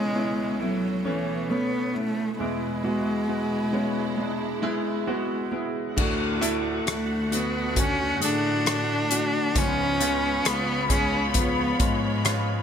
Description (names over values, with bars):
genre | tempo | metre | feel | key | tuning
pop ballad | 67 BPM | 4/4 | straight | unclear | A4 = 444 Hz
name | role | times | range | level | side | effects
warm cello | melody | 0.0-12.6 s | E3 to D4 | -26 LUFS | equal | ping-pong delay
clear concert grand piano | accompaniment | 0.0-12.6 s | C#2 to G#4 | -29 LUFS | right 1 dB | wide subtle chorus
warm studio string section | sustained chords | 0.0-12.6 s | C#2 to B5 | -33 LUFS | left 1 dB | none
nylon-string guitar | arpeggios | 6.0-12.6 s | C#3 to F#4 | -35 LUFS | left 6 dB | lush chorus
clear chamber cello section | bass | 6.0-12.6 s | C#2 to A2 | -31 LUFS | equal | none
loose indie drum kit | drums | 6.0-12.5 s | crash cymbal, hi-hat, kick drum, rim click | -26 LUFS | equal | none
room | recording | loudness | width
moderate plate reverb, RT60 2.1 s | bright 1980s-style digital production | -23 LUFS | side -8 dB against mid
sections
0.0-6.0 A section; 6.0-12.6 B section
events
none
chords
0.0 Aadd9/C#; 2.4 E; 6.0 D; 9.6 C#7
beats
0.60 1.50 | 2.39 3.29 4.18 5.08 | 5.98 6.87 7.77 8.66 | 9.56 10.45 11.35 12.24